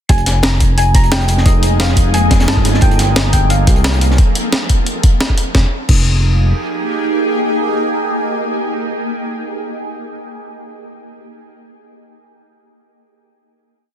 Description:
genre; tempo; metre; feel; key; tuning
liquid drum and bass; 176 BPM; 4/4; straight; F minor; A4 = 440 Hz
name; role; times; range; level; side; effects
soft round pluck; melody; 0.1-3.8 s; Eb5 to Bb5; -21 LUFS; left 1 dB; wide subtle chorus, ping-pong delay
shimmering ambient pad; sustained chords; 0.9-8.8 s; F3 to A4; -19 LUFS; equal; chorus, built-in reverb, phaser
smooth gliding synth bass; bass; 0.1-6.5 s; F1 to C2; -14 LUFS; equal; none
breakbeat sampler-style drum kit; drums; 0.1-6.0 s; crash cymbal, hi-hat, snare drum; -19 LUFS; equal; none
crunchy breakbeat drum kit; drums; 0.1-4.2 s; hi-hat, snare drum; -23 LUFS; equal; high-pass filter on hats, high-pass filter on snare, high-pass filter on room
electronic kick drum; drums; 0.1-6.0 s; none; -12 LUFS; equal; none
room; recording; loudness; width
little or no reverb; dense, heavily limited modern master; -11 LUFS; side -10 dB against mid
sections
0.1-5.5 drop; 5.5-8.3 final chord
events
drop 0.1-5.5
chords
0.1 Fm11; 2.6 Gm11; 5.5 Fm11

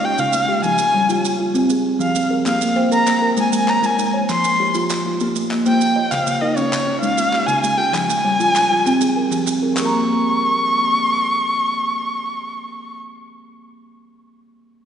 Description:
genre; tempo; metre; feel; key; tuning
southern african traditional, mbira-style interlocking cycle; 131 BPM (dotted quarters); 12/8; straight; Bb dorian; A4 = 440 Hz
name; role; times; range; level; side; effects
dark erhu; melody; 0.0-13.0 s; Db5 to Db6; -18 LUFS; equal; none
kalimba; arpeggios; 0.0-13.1 s; Db3 to Bb5; -21 LUFS; left 1 dB; none
kalimba; arpeggios; 0.0-13.1 s; Db3 to Bb5; -24 LUFS; right 3 dB; none
maracas; percussion; 0.2-9.9 s; none; -29 LUFS; right 5 dB; none
group handclap; percussion; 2.5-9.9 s; none; -31 LUFS; left 2 dB; none
room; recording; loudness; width
wet church reverb, RT60 3.0 s; recorded in a church or concert hall, nothing above 10.8 kHz; -15 LUFS; side -8 dB against mid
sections
0.0-9.8 A section; 9.8-13.4 B section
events
none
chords
0.0 Db; 0.6 Fm; 2.5 Bb5; 3.4 Ab; 4.3 F5; 5.2 Bbm; 6.1 Db; 7.9 Fm; 9.8 Bbm

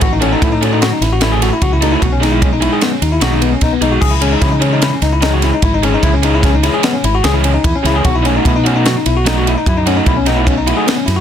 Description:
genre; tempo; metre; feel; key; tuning
math rock and midwest emo; 149 BPM; 5/4; straight; unclear; A4 = 440 Hz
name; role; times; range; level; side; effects
barky tine electric piano; arpeggios; 0.0-11.2 s; B3 to G#4; -16 LUFS; left 5 dB; lush chorus
growling fingered electric bass; bass; 0.0-11.2 s; G#1 to C#3; -16 LUFS; equal; overdrive
crisp fusion drum kit; drums; 0.0-11.2 s; crash cymbal, kick drum, ride cymbal, snare drum; -16 LUFS; right 1 dB; none
crunchy overdriven guitar; riff; 0.2-10.9 s; D#3 to A4; -18 LUFS; right 2 dB; none
room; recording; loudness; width
light reverb; dense, heavily limited modern master; -11 LUFS; side -9 dB against mid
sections
0.0-11.2 A section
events
none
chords
0.0 F#m7/A; 2.0 G#m7/B; 4.0 C#m; 8.0 F#m7

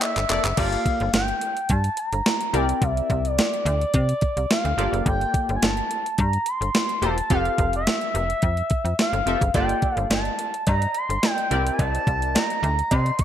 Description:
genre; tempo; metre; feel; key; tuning
early-eighties boogie funk; 107 BPM; 4/4; straight; G dorian; A4 = 438 Hz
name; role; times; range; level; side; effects
expressive synth lead; melody; 0.0-13.2 s; D5 to D6; -25 LUFS; equal; chorus, digital delay
funky polysynth comp; accompaniment; 0.0-12.4 s; Bb3 to F5; -28 LUFS; left 1 dB; chorus
clean 12-bit digital drum machine; drums; 0.0-13.2 s; crash cymbal, handclaps, hi-hat, kick drum, snare drum; -24 LUFS; equal; overdrive, gated reverb
cowbell; percussion; 0.0-0.2, 9.6-13.0 s; none; -33 LUFS; right 1 dB; none
slap-like FM bass; bass; 0.2-13.1 s; E1 to C3; -25 LUFS; equal; none
room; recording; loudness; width
light reverb, digital ambience; bright 1980s-style digital production; -20 LUFS; side -10 dB against mid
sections
0.6-13.2 A section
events
drum fill 0.0-0.6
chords
0.0 C13 (rootless); 0.6 Gm9; 2.5 C9; 4.8 Gm9; 7.3 Fmaj9; 9.5 Gm9; 11.5 C9

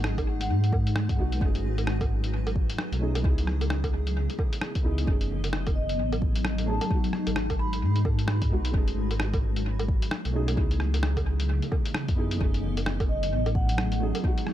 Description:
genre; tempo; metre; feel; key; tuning
future garage; 131 BPM; 4/4; swing 60% on 16ths; F# dorian; A4 = 440 Hz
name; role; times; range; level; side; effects
felt-muted upright piano; accompaniment; 0.0-14.5 s; G#3 to G#4; -36 LUFS; right 2 dB; sidechain pumping, dub echo
granular cloud pad; sustained chords; 0.0-14.5 s; C#3 to D#5; -33 LUFS; left 1 dB; built-in reverb, sidechain pumping
dark detuned saw bass; bass; 0.0-14.1 s; F#1 to G#2; -27 LUFS; equal; tube saturation
lo-fi sampler-style drum kit; drums; 0.0-14.5 s; hi-hat, rim click, woodblock; -34 LUFS; equal; dub echo
electronic kick drum; drums; 0.2-14.3 s; none; -27 LUFS; equal; none
vibraphone with soft mallets; melody; 0.4-0.7, 5.8-8.0, 13.1-14.0 s; D#5 to B5; -36 LUFS; equal; dub echo
room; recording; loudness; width
digital ambience; echo-heavy mix; -24 LUFS; side -12 dB against mid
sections
0.0-14.5 A section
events
none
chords
0.0 G#m7; 1.4 F#m69; 3.2 C#m9; 5.1 F#m69; 6.9 G#m7; 8.7 F#m69; 10.6 C#m9; 12.4 F#m69

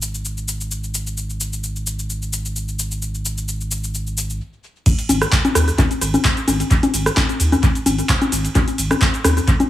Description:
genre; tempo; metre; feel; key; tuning
acid house; 130 BPM; 4/4; swing 54% on 16ths; unclear; A4 = 441 Hz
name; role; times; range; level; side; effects
warm sub bass; bass; 0.0-9.4 s; G#1 to D#2; -22 LUFS; equal; tube saturation, sidechain pumping
booming analog drum machine; drums; 0.0-9.7 s; cabasa, congas, crash cymbal, handclaps, hi-hat, ride cymbal, rim click; -19 LUFS; left 1 dB; analog delay
electronic kick drum; drums; 4.9-9.6 s; none; -17 LUFS; equal; none
room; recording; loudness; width
moderate spring reverb, RT60 1.2 s; echo-heavy mix, small room ambience; -17 LUFS; side -13 dB against mid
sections
0.0-4.9 A section; 4.9-9.7 B section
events
stop 4.4-4.9; drop 4.9-9.7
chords
none

